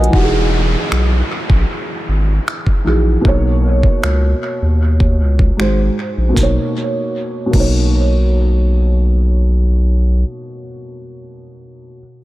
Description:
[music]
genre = contemporary R&B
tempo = 77 BPM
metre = 4/4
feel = straight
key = B major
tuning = A4 = 440 Hz
[part]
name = felt-muted upright piano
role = accompaniment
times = 0.0-12.0 s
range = G#2 to G#5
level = -19 LUFS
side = right 1 dB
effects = low-pass filter, dub echo
[part]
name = saturated sub bass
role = bass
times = 0.0-10.2 s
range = E1 to D#2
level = -13 LUFS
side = equal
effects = none
[part]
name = smooth R&B drum kit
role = drums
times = 0.0-7.8 s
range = crash cymbal, finger snaps, hi-hat, kick drum, snare drum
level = -16 LUFS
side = equal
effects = dub echo
[part]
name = downlifter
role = sound effects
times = 0.1-6.4 s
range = none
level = -25 LUFS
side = equal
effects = none
[sound]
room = digital ambience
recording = echo-heavy mix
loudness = -12 LUFS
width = side -17 dB against mid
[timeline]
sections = 0.1-6.4 A section; 6.4-9.5 B section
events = filter sweep on felt piano 0.1-6.4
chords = 0.1 Emaj9; 3.2 Bmaj9; 5.6 G#7; 6.4 Bmaj9

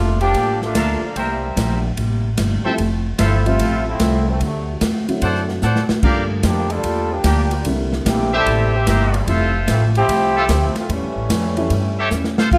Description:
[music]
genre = jazz, big band swing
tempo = 148 BPM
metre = 4/4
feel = swing 67% on 8ths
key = unclear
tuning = A4 = 439 Hz
[part]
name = clear trombone section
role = second line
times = 0.0-12.4 s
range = C3 to A4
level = -24 LUFS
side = equal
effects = none
[part]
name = picked steel-string acoustic guitar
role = accompaniment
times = 0.0-12.6 s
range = G2 to A4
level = -30 LUFS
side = equal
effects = none
[part]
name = upright bass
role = bass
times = 0.0-12.6 s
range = F1 to A2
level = -23 LUFS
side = equal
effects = none
[part]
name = swinging big-band drum kit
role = drums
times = 0.2-12.6 s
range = crash cymbal, hi-hat, kick drum, ride cymbal, snare drum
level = -25 LUFS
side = equal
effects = none
[part]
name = clear trumpet section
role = stabs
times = 0.8-12.5 s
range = F4 to A5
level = -25 LUFS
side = equal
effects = none
[part]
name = dark upright piano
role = accompaniment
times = 2.6-11.7 s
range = D3 to E5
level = -27 LUFS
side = equal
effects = none
[part]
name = growling alto saxophone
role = melody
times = 12.5-12.6 s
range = F4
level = -16 LUFS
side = equal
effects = none
[sound]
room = moderate large studio reverb, RT60 0.9 s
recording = none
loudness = -18 LUFS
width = mono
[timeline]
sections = 0.0-12.5 A section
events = trombone section solo 0.0-12.5; drum fill 5.6-6.0, 12.1-12.5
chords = 0.0 Gm9; 1.2 C7; 2.8 Fmaj7; 4.4 D7; 6.0 Gm7; 7.7 C7; 9.3 Fmaj7; 10.9 A7

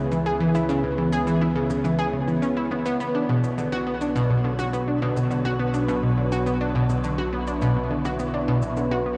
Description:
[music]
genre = ambient, sequencer-driven space music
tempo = 104 BPM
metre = 4/4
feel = straight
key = B dorian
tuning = A4 = 440 Hz
[part]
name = evolving wavetable pad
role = sustained chords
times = 0.0-9.2 s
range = C#3 to B4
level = -30 LUFS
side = equal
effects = chorus, built-in reverb
[part]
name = analog pluck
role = riff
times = 0.0-9.2 s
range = B2 to G#4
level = -26 LUFS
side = equal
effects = chorus, tape echo
[part]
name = fat analog bass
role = bass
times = 0.0-9.2 s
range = B1 to C#2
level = -34 LUFS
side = equal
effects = transformer saturation
[part]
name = wind-like tuned noise texture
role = texture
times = 0.0-9.2 s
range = C#5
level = -41 LUFS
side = equal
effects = built-in reverb
[part]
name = percussion blips and cabasa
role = percussion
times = 0.1-9.0 s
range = none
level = -41 LUFS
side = equal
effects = tape echo
[sound]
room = wet huge ambient reverb, RT60 7.9 s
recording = worn, warbling old tape, cassette tape, warbly pitch drift, small room reverb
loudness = -24 LUFS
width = mono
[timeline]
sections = 0.0-9.2 A section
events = none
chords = 0.0 C#m7; 3.0 Bm

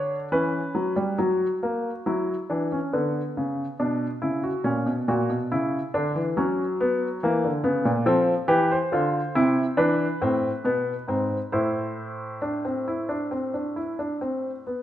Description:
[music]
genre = classical, baroque-style 3-part fugue for grand piano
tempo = 69 BPM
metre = 4/4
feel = straight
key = A minor from 8.1 s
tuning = A4 = 440 Hz
[part]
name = warm baby grand piano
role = solo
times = 0.0-14.8 s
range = G#2 to C#5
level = -23 LUFS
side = equal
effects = none
[sound]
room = moderate recital hall reverb, RT60 1.3 s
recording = nothing above 10.4 kHz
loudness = -23 LUFS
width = side -12 dB against mid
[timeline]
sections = 0.0-1.2 A section; 1.2-14.8 B section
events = none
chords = 0.0 Bm/D; 1.2 F#7; 2.9 Bm; 4.7 F#/A#; 8.1 F; 9.8 E7; 11.5 Am

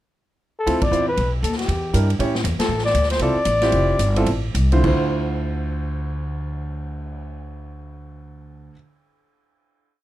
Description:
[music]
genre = jazz, small-group swing and bop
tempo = 202-238 BPM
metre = 4/4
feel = swing 60% on 8ths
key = D minor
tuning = A4 = 440 Hz
[part]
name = mellow flugelhorn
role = melody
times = 0.6-4.5 s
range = G4 to D5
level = -22 LUFS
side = left 2 dB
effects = none
[part]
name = clear baby grand piano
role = accompaniment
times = 0.7-8.7 s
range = D2 to C#5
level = -24 LUFS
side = right 2 dB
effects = none
[part]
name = upright bass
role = bass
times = 0.7-8.7 s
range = F1 to A2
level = -22 LUFS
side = equal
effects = none
[part]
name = swinging big-band drum kit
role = drums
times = 0.7-7.1 s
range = crash cymbal, cymbal swell, hi-hat, kick drum, ride cymbal, snare drum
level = -28 LUFS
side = equal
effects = none
[sound]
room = little or no reverb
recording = dark, warm production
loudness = -18 LUFS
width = side -14 dB against mid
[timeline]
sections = 0.0-0.7 pickup bar; 0.7-4.8 A section; 4.8-7.2 final chord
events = band accent 0.8, 2.6; slowing down 2.7-4.8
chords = 0.0 N.C.; 0.7 Dm9; 1.2 B7; 1.7 Em7b5; 2.2 A7; 2.7 Dm9

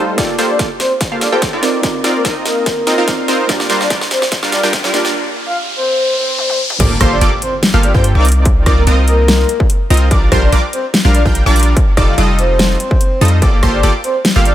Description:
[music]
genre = future bass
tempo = 145 BPM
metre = 4/4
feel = swing 53% on 16ths, half-time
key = G minor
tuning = A4 = 440 Hz
[part]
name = soft round pluck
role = accompaniment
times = 0.0-5.1 s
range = A3 to D6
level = -22 LUFS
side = right 3 dB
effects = wide subtle chorus, vintage 12-bit sampler grit, sidechain pumping, tape echo
[part]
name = supersaw stab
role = riff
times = 0.0-14.5 s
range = G3 to G5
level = -17 LUFS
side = right 1 dB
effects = sidechain pumping
[part]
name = dubstep drum kit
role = drums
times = 0.2-14.5 s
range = crash cymbal, hi-hat, rim click, snare drum, toms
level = -18 LUFS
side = left 1 dB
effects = high-pass filter on snare, high-pass filter on hats, high-pass filter on toms, high-pass filter on cymbals
[part]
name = electronic kick drum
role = drums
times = 0.2-13.7 s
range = none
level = -15 LUFS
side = equal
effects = distortion
[part]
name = riser and impact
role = sound effects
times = 3.9-8.5 s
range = none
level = -23 LUFS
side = equal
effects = none
[part]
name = breathy flute-like synth lead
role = melody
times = 0.5-14.5 s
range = Bb4 to F5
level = -19 LUFS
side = left 1 dB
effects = lush chorus, sidechain pumping, tape echo
[part]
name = wide unison pluck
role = arpeggios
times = 6.8-14.5 s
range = C6 to G6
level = -23 LUFS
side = right 1 dB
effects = sidechain pumping
[part]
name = warm 808-style bass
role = bass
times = 6.8-14.5 s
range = F1 to G2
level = -12 LUFS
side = equal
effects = sidechain pumping
[sound]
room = light reverb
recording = high-pass filter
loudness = -11 LUFS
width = side -12 dB against mid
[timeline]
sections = 0.0-6.8 A section; 6.8-14.5 B section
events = build-up 0.0-6.8; drum fill 0.0-5.1, 6.4-6.8; riser 3.9-6.8; drop 6.8-14.5; impact 6.8-8.5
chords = 0.2 Gm9; 1.6 Cm11; 3.5 Bb6; 5.1 N.C.; 6.8 Gm9; 8.2 Cm11; 10.1 Bb6; 11.8 F13; 13.4 Gm9

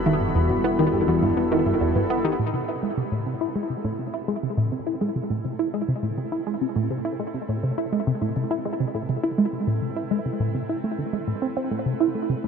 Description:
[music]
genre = ambient, sequencer-driven space music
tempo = 103 BPM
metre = 4/4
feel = straight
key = A harmonic minor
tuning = A4 = 444 Hz
[part]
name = evolving wavetable pad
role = sustained chords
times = 0.0-12.5 s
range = G3 to B4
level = -30 LUFS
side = right 1 dB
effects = chorus, built-in reverb
[part]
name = fat analog bass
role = bass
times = 0.0-2.4 s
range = E1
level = -36 LUFS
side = equal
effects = none
[part]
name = bubbling stepped-filter texture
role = texture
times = 0.0-2.4 s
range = A4 to B5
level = -36 LUFS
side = equal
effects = chorus, built-in reverb
[part]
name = soft round pluck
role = arpeggios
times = 0.1-2.3 s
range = E4 to E5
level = -30 LUFS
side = left 3 dB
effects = chorus, auto-pan, tape echo
[part]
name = tight sequenced synth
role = riff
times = 0.1-12.5 s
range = E2 to E4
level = -23 LUFS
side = equal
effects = chorus, phaser, tape echo
[sound]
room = moderate huge ambient reverb, RT60 8.1 s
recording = dark, warm production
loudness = -22 LUFS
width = side -6 dB against mid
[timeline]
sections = 0.0-2.4 A section; 2.4-12.5 B section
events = filter sweep on synth arpeggio sound 0.0-2.4, 2.4-12.5; fade-in on ambient pad 2.4-12.5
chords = 0.0 Emadd9; 2.4 Amadd9

